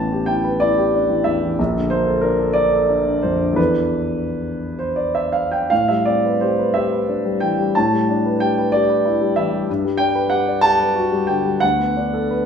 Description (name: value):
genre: classical, impressionist solo piano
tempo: 53-64 BPM (dotted quarters)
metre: 6/8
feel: rubato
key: unclear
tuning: A4 = 440 Hz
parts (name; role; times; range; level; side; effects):
- warm concert grand piano; solo; 0.0-12.5 s; A1 to A5; -16 LUFS; equal; none
room: wet stone room reverb, RT60 1.0 s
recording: heard from further back in the room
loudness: -16 LUFS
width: side -7 dB against mid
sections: 0.0-12.5 A section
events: none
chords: 0.0 G69/A; 1.6 Bbmaj7; 3.6 E7sus4; 5.7 Am11; 7.8 G69/A; 9.7 Gmaj7; 11.6 D6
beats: 0.61 | 1.59 2.56 | 3.58 4.62 | 5.71 6.75 | 7.75 8.72 | 9.69 10.63 | 11.63